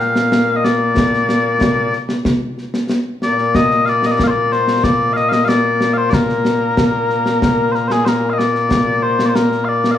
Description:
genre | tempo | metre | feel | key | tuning
scottish traditional, Scottish pipe music | 93 BPM | 4/4 | straight | Bb major | A4 = 440 Hz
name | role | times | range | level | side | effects
mellow small bagpipes | melody | 0.0-10.0 s | Bb2 to F5 | -14 LUFS | left 2 dB | none
concert snare drum and concert bass drum | drums | 0.0-10.0 s | none | -18 LUFS | equal | none
room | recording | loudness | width
moderate recital hall reverb, RT60 1.4 s | small room ambience | -13 LUFS | side -10 dB against mid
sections
0.0-8.7 A section; 8.7-10.0 B section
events
none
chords
none

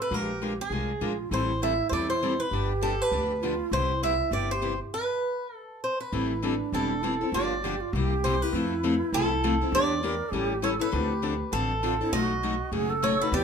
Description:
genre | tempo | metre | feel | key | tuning
acoustic string swing (jazz manouche) | 200 BPM | 4/4 | swing 58% on 8ths | C major | A4 = 440 Hz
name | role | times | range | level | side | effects
picked swing-style acoustic guitar | melody | 0.0-13.4 s | Ab4 to E5 | -29 LUFS | right 1 dB | none
breathy mellow shakuhachi | second line | 0.0-13.4 s | D4 to Bb4 | -31 LUFS | right 4 dB | none
picked steel-string acoustic guitar | accompaniment | 0.1-13.4 s | B2 to Bb4 | -30 LUFS | left 5 dB | none
upright bass | bass | 0.1-13.4 s | E1 to F2 | -32 LUFS | equal | none
room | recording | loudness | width
moderate club reverb, RT60 0.7 s | minimal, uncompressed stereo recording | -25 LUFS | side -6 dB against mid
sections
0.0-6.1 A section; 6.1-13.4 B section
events
stop 4.9-6.1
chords
0.1 Bb7; 1.3 Am7; 2.5 G7; 3.7 Cmaj7; 6.1 Am7; 7.3 Gm7; 7.9 C7; 8.5 Fmaj7; 9.7 Em7b5; 10.3 A7; 10.9 Dm7; 12.1 B7

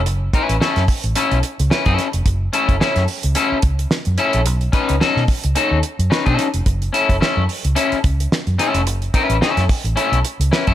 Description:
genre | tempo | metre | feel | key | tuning
funk | 109 BPM | 4/4 | swing 56% on 16ths | F# dorian | A4 = 437 Hz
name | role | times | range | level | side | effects
vintage muted fingered electric bass | bass | 0.0-10.7 s | E#1 to B2 | -18 LUFS | equal | none
damped 70s drum kit | drums | 0.1-10.7 s | hi-hat, kick drum, snare drum | -20 LUFS | right 1 dB | none
electric guitar at the edge of break-up | accompaniment | 0.3-10.7 s | C#4 to B4 | -19 LUFS | left 3 dB | wide subtle chorus
room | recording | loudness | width
light reverb, small room reverb | none | -15 LUFS | side -12 dB against mid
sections
0.0-10.7 A section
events
none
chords
0.0 F#m7; 4.5 B9; 6.7 F#m7

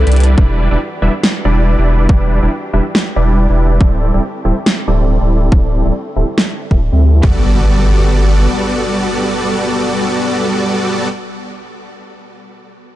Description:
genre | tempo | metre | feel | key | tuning
future bass | 140 BPM | 4/4 | swing 56% on 16ths, half-time | G major | A4 = 440 Hz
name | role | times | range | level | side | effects
dark studio string section | sustained chords | 0.0-11.1 s | C3 to B4 | -29 LUFS | equal | none
dense compressed supersaw | riff | 0.0-11.1 s | G3 to E5 | -17 LUFS | equal | sidechain pumping, low-pass filter, digital delay
saturated sub bass | bass | 0.0-8.5 s | D1 to D2 | -12 LUFS | equal | sidechain pumping
big-room dance drum kit | drums | 0.1-6.5 s | hi-hat, snare drum | -15 LUFS | equal | none
electronic kick drum | drums | 0.4-7.3 s | none | -10 LUFS | equal | overdrive
impact | sound effects | 7.2-11.1 s | none | -22 LUFS | equal | none
room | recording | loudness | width
little or no reverb | dark, warm production, nothing above 10.4 kHz | -11 LUFS | side -14 dB against mid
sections
0.0-7.2 A section; 7.2-10.7 B section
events
filter sweep on supersaw synth 0.0-7.2; filter sweep on string section 0.0-7.2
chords
0.2 Em7; 3.8 D9sus4; 7.2 Gmaj9

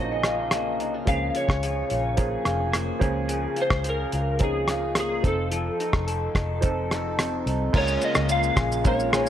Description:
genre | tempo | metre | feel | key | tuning
indie pop, bedroom pop | 108 BPM | 4/4 | straight | Db major | A4 = 437 Hz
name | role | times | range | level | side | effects
electric slide guitar | melody | 0.0-9.3 s | Ab4 to F5 | -28 LUFS | equal | ensemble chorus, tape echo
electric guitar through a small old amp | accompaniment | 0.0-9.3 s | Db3 to A4 | -29 LUFS | left 3 dB | lush chorus, warbly pitch drift
warm upright piano | accompaniment | 0.0-9.3 s | F3 to Bb4 | -31 LUFS | right 5 dB | none
vintage muted fingered electric bass | bass | 0.0-9.3 s | F1 to Db2 | -30 LUFS | equal | none
cloth-damped thuddy drum kit | drums | 0.2-9.3 s | crash cymbal, hi-hat, kick drum, ride cymbal, rim click, shaker | -25 LUFS | equal | none
hollow soft pad | sustained chords | 7.8-9.3 s | Db3 to F4 | -34 LUFS | left 3 dB | chorus
room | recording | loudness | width
light reverb, studio ambience | none | -22 LUFS | side -10 dB against mid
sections
0.0-7.7 A section; 7.7-9.3 B section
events
none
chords
0.0 Db6; 3.0 Bbm7/Db; 5.2 F7; 7.7 Db6

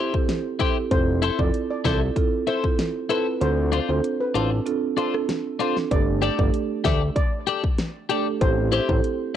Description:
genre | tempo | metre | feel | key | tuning
dancehall | 96 BPM | 4/4 | straight | unclear | A4 = 440 Hz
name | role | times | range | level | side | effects
steel pan | melody | 0.0-9.0 s | A4 to E5 | -30 LUFS | equal | cassette tape, analog delay, plate reverb
twelve-string electric guitar | arpeggios | 0.0-8.9 s | D4 to D5 | -26 LUFS | left 9 dB | plate reverb
marimba with medium mallets | accompaniment | 0.1-9.0 s | A3 to A4 | -26 LUFS | right 7 dB | plate reverb
pop drum kit | drums | 0.1-9.2 s | hi-hat, kick drum, rim click, snare drum | -24 LUFS | left 1 dB | cassette tape
fat analog bass | bass | 0.9-9.0 s | F1 to D2 | -24 LUFS | left 1 dB | none
room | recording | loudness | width
moderate small room reverb, RT60 0.5 s | home recording on cassette | -20 LUFS | side -10 dB against mid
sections
0.0-5.9 A section; 5.9-9.4 B section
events
kick muted 3.4-5.9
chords
0.0 Am7; 0.9 Fmaj7; 3.4 Dm7; 5.9 Gsus2; 8.4 Am7

